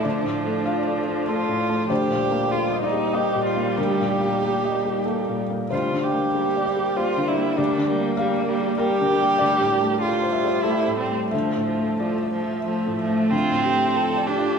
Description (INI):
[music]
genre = neoclassical piano and strings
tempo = 87-99 BPM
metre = 3/4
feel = rubato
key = D minor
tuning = A4 = 440 Hz
[part]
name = rich cello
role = second line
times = 0.0-14.6 s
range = A3 to G4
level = -24 LUFS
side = right 2 dB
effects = none
[part]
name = felt-muted upright piano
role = accompaniment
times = 0.0-14.6 s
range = D2 to F5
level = -24 LUFS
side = left 2 dB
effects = none
[part]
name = rich viola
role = accompaniment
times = 0.0-14.6 s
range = F3 to A4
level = -29 LUFS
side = right 2 dB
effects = none
[part]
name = ethereal airy pad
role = sustained chords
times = 0.0-14.6 s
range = F3 to E5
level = -30 LUFS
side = equal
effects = ensemble chorus, built-in reverb
[sound]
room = wet scoring stage reverb, RT60 1.8 s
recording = recorded in a church or concert hall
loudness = -20 LUFS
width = side -6 dB against mid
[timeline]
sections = 0.0-13.3 A section; 13.3-14.6 A section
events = none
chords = 0.0 Dm; 1.9 Eb/D; 5.7 Gm/D; 9.4 Am7/D; 11.3 Dmadd9; 13.3 Dm